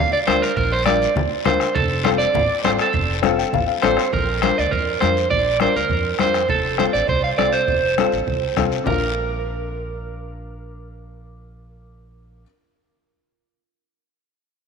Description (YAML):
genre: latin, cumbia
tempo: 203 BPM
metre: 4/4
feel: straight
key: Bb major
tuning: A4 = 439 Hz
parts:
  - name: electric guitar at the edge of break-up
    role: melody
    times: 0.0-12.4 s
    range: A4 to F5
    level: -20 LUFS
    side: right 4 dB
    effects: spring reverb, slapback echo
  - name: upright bass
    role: bass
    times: 0.0-12.4 s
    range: F1 to F2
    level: -28 LUFS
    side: right 1 dB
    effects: none
  - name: guiro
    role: percussion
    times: 0.0-8.9 s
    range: none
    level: -33 LUFS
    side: left 11 dB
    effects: none
  - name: warm upright piano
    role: accompaniment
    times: 0.3-12.4 s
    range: C4 to G5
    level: -24 LUFS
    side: left 8 dB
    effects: none
  - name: bombo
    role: percussion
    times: 0.3-8.9 s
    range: none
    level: -26 LUFS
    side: equal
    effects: none
  - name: congas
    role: percussion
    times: 0.3-8.9 s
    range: none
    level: -27 LUFS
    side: left 9 dB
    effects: none
room: moderate plate reverb, RT60 2.5 s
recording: 1960s-style stereo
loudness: -17 LUFS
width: side -6 dB against mid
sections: 0.0-4.1 A section; 4.1-8.9 B section; 8.9-11.2 C section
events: upright piano fill 3.2-4.1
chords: 0.0 Bb; 1.8 F; 4.1 Bb; 6.5 F; 8.9 Bb